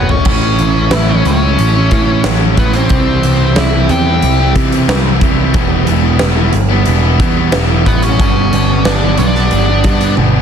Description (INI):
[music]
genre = quiet-loud alternative rock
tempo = 91 BPM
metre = 4/4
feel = straight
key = unclear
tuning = A4 = 441 Hz
[part]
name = nasal lead guitar with a parked wah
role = melody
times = 0.0-10.1 s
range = B3 to G5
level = -18 LUFS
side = equal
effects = overdrive, tape echo
[part]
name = distorted electric guitar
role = riff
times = 0.0-10.4 s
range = F#2 to F#4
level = -18 LUFS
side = left 13 dB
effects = distortion
[part]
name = growling picked electric bass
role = bass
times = 0.0-10.4 s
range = E1 to C3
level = -14 LUFS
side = equal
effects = overdrive
[part]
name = huge arena drum kit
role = drums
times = 0.1-10.3 s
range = crash cymbal, hi-hat, kick drum, snare drum, toms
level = -15 LUFS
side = equal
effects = none
[part]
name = distorted electric guitar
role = riff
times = 0.3-10.4 s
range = G2 to E4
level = -17 LUFS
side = right 13 dB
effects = distortion
[sound]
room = light reverb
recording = dense, heavily limited modern master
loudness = -9 LUFS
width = side -8 dB against mid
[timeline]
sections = 0.3-10.4 A section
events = drum fill 0.0, 10.2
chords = 0.3 A; 2.9 C; 5.6 Em; 8.2 G